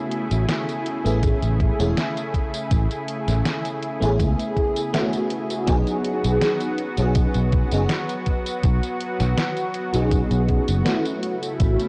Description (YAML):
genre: vaporwave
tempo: 81 BPM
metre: 4/4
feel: straight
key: B mixolydian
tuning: A4 = 439 Hz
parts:
  - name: FM electric piano with soft pad layer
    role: accompaniment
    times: 0.0-11.9 s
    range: F#3 to G#4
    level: -27 LUFS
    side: equal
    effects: phaser, ensemble chorus, analog delay
  - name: lush unison pad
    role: sustained chords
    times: 0.0-11.9 s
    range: C#3 to G#4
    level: -31 LUFS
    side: equal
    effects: chorus
  - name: detuned 8-bit digital drum machine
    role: drums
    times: 0.1-11.9 s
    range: hi-hat, snare drum, tambourine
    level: -31 LUFS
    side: equal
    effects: studio reverb
  - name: fretless electric bass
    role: bass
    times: 0.3-11.7 s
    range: E1 to C#2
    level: -24 LUFS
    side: equal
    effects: tube saturation
  - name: electronic kick drum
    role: drums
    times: 1.2-11.8 s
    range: none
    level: -24 LUFS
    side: equal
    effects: studio reverb
room: light reverb, digital ambience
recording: dry, gritty hardware recording, transformer saturation, cassette tape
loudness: -22 LUFS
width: mono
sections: 0.0-5.7 A section; 5.7-11.9 B section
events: none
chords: 0.0 Amaj7; 5.7 B6; 11.2 A